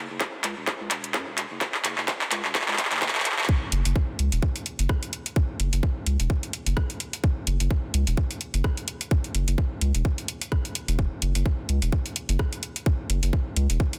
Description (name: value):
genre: minimal techno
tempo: 128 BPM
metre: 4/4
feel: swing 56% on 16ths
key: unclear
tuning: A4 = 440 Hz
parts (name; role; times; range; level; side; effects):
- round analog bass; bass; 0.0-13.8 s; E1 to F#2; -27 LUFS; equal; sidechain pumping, high-pass filter
- booming analog drum machine; drums; 0.2-14.0 s; handclaps, hi-hat, rim click; -30 LUFS; equal; high-pass filter on snare, high-pass filter on hats
- electronic kick drum; drums; 0.2-13.9 s; none; -29 LUFS; equal; high-pass filter on kick, high-pass filter on room
room: light reverb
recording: dense, heavily limited modern master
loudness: -26 LUFS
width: mono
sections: 0.0-3.5 A section; 3.5-14.0 B section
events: build-up 0.0-3.5; drum fill 0.0-3.5; drop 3.5-14.0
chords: none